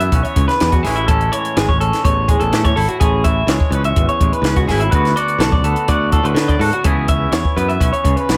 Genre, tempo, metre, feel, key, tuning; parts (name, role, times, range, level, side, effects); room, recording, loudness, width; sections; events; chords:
math rock and midwest emo; 125 BPM; 4/4; straight; A4 = 439 Hz
twangy electric guitar; accompaniment; 0.0-8.4 s; D2 to F#4; -24 LUFS; equal; subtle chorus
electric guitar through a small old amp; arpeggios; 0.0-8.4 s; E4 to E5; -21 LUFS; equal; analog delay
modern bright picked electric bass; bass; 0.0-8.4 s; G#1 to D3; -21 LUFS; equal
compact cocktail drum kit; drums; 0.0-8.4 s; hi-hat, kick drum, snare drum; -20 LUFS; equal
light reverb; -16 LUFS; mono
0.0-8.4 A section
0.0 C#m7; 0.8 Amaj7; 4.9 D6; 6.8 C#m7